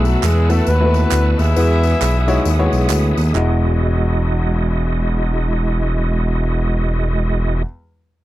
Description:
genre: uptempo gospel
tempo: 135 BPM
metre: 4/4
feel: swing 60% on 8ths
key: E major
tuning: A4 = 441 Hz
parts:
  - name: mellow horn section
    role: melody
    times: 0.0-2.9 s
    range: F#3 to E5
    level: -21 LUFS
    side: left 2 dB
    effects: none
  - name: clear concert grand piano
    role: accompaniment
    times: 0.0-7.6 s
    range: E2 to D#5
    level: -22 LUFS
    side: left 2 dB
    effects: none
  - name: bright tonewheel organ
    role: sustained chords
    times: 0.0-7.6 s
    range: G#3 to E6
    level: -24 LUFS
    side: right 3 dB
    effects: fast rotary speaker, chorus vibrato
  - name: smooth synth bass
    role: bass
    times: 0.0-7.6 s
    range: E1 to E2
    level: -16 LUFS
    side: equal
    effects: none
  - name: tambourine and handclaps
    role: percussion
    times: 0.0-3.6 s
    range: none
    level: -28 LUFS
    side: right 6 dB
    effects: none
room: little or no reverb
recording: dry, close 1970s-style studio recording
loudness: -14 LUFS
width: side -16 dB against mid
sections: 0.0-3.3 A section; 3.3-6.9 B section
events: none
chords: 0.0 B7sus4; 1.6 Emaj9

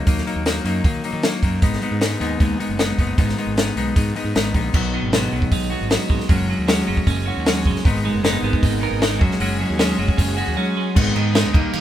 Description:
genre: indie rock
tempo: 154 BPM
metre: 4/4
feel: straight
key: G# minor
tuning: A4 = 440 Hz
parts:
  - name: crunchy overdriven guitar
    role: riff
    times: 0.0-11.8 s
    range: G#2 to F#4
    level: -23 LUFS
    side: left 2 dB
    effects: none
  - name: fuzz fingered electric bass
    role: bass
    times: 0.0-11.8 s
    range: F#1 to D#3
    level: -24 LUFS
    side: right 1 dB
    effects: overdrive
  - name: compact cocktail drum kit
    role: drums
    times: 0.1-11.8 s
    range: crash cymbal, hi-hat, kick drum, snare drum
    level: -20 LUFS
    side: equal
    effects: none
  - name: overdriven electric guitar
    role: riff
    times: 4.7-11.8 s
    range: G#2 to A#4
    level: -25 LUFS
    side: right 7 dB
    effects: none
  - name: string machine, full ensemble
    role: sustained chords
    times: 7.9-11.8 s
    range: B3 to B5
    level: -30 LUFS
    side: right 1 dB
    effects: ensemble chorus
room: light reverb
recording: band playing live in one room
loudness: -17 LUFS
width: side -11 dB against mid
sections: 0.0-4.7 A section; 4.7-11.0 B section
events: none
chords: 0.0 D#m; 1.6 G#m7; 4.7 B6; 6.3 F#sus2; 7.8 G#madd9; 9.2 F#sus2; 11.0 G#m

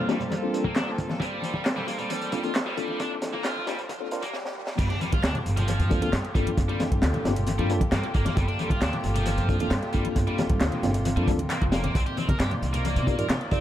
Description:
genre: breakbeat, breaks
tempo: 134 BPM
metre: 4/4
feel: straight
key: G minor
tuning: A4 = 439 Hz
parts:
  - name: rich chamber string section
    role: sustained chords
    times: 0.0-13.6 s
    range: C3 to D5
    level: -34 LUFS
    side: equal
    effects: sidechain pumping
  - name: scooped high-gain guitar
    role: riff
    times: 0.0-13.6 s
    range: F3 to Bb4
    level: -33 LUFS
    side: right 1 dB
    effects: distortion, overdrive, vintage 12-bit sampler grit, low-pass filter, tape echo
  - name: mellow tine electric piano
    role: stabs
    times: 0.0-13.6 s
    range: Bb3 to D5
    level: -31 LUFS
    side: left 2 dB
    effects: medium stereo tremolo, low-pass filter, tape echo
  - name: riser and swell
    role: sound effects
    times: 0.6-4.8 s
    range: none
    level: -42 LUFS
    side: equal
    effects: none
  - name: crunchy breakbeat drum kit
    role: drums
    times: 0.1-13.6 s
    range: crash cymbal, hi-hat, kick drum, snare drum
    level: -28 LUFS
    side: equal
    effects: low-pass filter on kick, low-pass filter on hats, low-pass filter on cymbals, low-pass filter on snare, low-pass filter on room, tape echo
  - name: congas and bongos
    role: percussion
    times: 0.2-13.6 s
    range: none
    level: -35 LUFS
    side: left 3 dB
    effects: tape echo
  - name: house drum kit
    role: drums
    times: 0.8-13.5 s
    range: handclaps, hi-hat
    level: -37 LUFS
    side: equal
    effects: overdrive, tape echo
  - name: upright bass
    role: bass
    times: 4.8-13.6 s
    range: F1 to C3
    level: -27 LUFS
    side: equal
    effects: tube saturation
room: light reverb, studio reverb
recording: echo-heavy mix, high-pass filter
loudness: -23 LUFS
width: side -12 dB against mid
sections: 0.0-4.8 A section; 4.8-13.6 B section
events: build-up 0.0-4.8; filter sweep on drum 0.0-4.8; filter sweep on tine electric piano 0.0-4.8; filter sweep 0.0-4.8; swell 3.9-4.8; drum fill 4.3-4.8; drop 4.8-13.6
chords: 0.0 Gm11; 12.0 Cm11

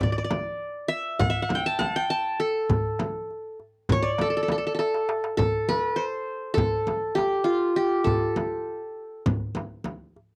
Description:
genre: Turkish makam ensemble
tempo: 201 BPM (eighths)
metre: 9/8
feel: straight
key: A makam hicaz, A makam ussak from 5.4 s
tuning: A4 = 440 Hz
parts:
  - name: qanun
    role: melody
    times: 0.0-9.2 s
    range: F4 to A5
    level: -27 LUFS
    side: equal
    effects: none
  - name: darbuka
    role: percussion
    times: 0.0-10.2 s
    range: none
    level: -31 LUFS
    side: equal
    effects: none
  - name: frame drum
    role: percussion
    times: 0.0-10.0 s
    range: none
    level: -32 LUFS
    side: equal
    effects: none
room: little or no reverb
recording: dry, close 1970s-style studio recording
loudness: -26 LUFS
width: mono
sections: 0.0-5.4 A section; 5.4-10.4 B section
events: drum fill 4.8-5.4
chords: none

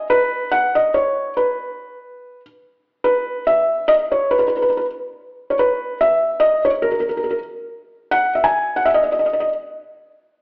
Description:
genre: italian folk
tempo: 142 BPM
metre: 3/4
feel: swing 54% on 8ths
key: unclear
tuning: A4 = 440 Hz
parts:
  - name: felt-muted upright piano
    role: solo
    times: 0.0-9.5 s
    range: A#4 to G#5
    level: -16 LUFS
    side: equal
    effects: none
room: wet recital hall reverb, RT60 1.5 s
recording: AM radio sound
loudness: -16 LUFS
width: side -28 dB against mid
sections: 0.0-2.6 A section; 2.6-10.4 B section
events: none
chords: none

